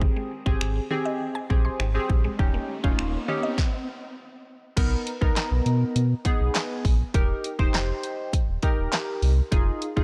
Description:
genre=dance-pop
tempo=101 BPM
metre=4/4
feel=straight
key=unclear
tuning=A4 = 440 Hz
part: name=chorused retro synth keys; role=accompaniment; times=0.0-10.0 s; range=B3 to C5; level=-32 LUFS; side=equal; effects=sidechain pumping
part: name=mallet-like synth pluck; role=arpeggios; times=0.0-3.5 s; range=Eb3 to C6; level=-38 LUFS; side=equal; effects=chorus, sidechain pumping, tape echo
part: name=sub bass with octave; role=bass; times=0.0-10.0 s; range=Eb1 to B2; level=-27 LUFS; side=equal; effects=sidechain pumping
part: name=house drum kit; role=drums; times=0.0-10.0 s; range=crash cymbal, finger snaps, handclaps, hi-hat, kick drum, snare drum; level=-27 LUFS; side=equal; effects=none
part: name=riser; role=sound effects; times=2.2-3.6 s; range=none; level=-39 LUFS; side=equal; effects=none
room=digital ambience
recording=dry, gritty hardware recording, transformer saturation, cassette tape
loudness=-25 LUFS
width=mono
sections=0.0-4.8 A section; 4.8-10.0 B section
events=riser 2.2-4.8; stop 3.6-4.8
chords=0.0 Abmaj7; 2.4 Eb7; 4.8 Bmaj7; 7.1 Eb; 9.5 Fm7

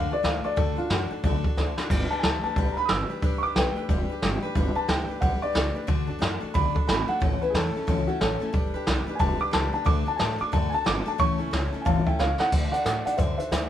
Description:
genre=rockabilly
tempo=181 BPM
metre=4/4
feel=swing 62% on 8ths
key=D major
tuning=A4 = 441 Hz
part: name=dark upright piano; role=melody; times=0.0-13.7 s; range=F4 to E6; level=-28 LUFS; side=equal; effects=none
part: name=picked steel-string acoustic guitar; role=accompaniment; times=0.0-13.7 s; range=A2 to B4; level=-31 LUFS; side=left 4 dB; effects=none
part: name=upright bass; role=bass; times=0.0-13.7 s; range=E1 to A2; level=-31 LUFS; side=equal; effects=none
part: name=jazz brush drum kit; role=drums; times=0.2-13.6 s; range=crash cymbal, hi-hat, kick drum, snare drum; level=-26 LUFS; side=right 1 dB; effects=none
room=moderate studio reverb, RT60 0.8 s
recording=band playing live in one room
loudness=-23 LUFS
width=side -11 dB against mid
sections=0.0-12.5 A section; 12.5-13.7 B section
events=upright piano solo 0.0-12.5; drum fill 1.6-1.9, 12.2-12.5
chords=0.0 D; 1.9 G; 5.9 D; 7.2 A; 8.5 G; 9.9 D; 11.2 A; 12.5 D

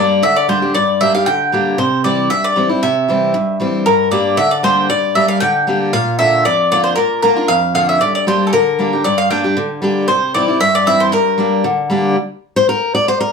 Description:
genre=bluegrass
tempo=231 BPM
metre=4/4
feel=straight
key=G dorian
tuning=A4 = 439 Hz
part: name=mandolin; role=melody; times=0.0-11.9 s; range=A4 to G5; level=-14 LUFS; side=equal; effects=none
part: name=picked steel-string acoustic guitar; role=accompaniment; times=0.0-13.3 s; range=F2 to D5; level=-16 LUFS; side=left 1 dB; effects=none
room=wet studio ambience, RT60 0.5 s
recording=heard from further back in the room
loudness=-12 LUFS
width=side -5 dB against mid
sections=0.0-12.2 A section; 12.2-13.3 B section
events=steel-string acoustic guitar solo 12.2-13.3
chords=0.0 Gm; 1.8 C; 3.9 Gm; 5.9 Bb; 8.0 Gm; 10.1 C; 11.1 Gm; 12.2 N.C.

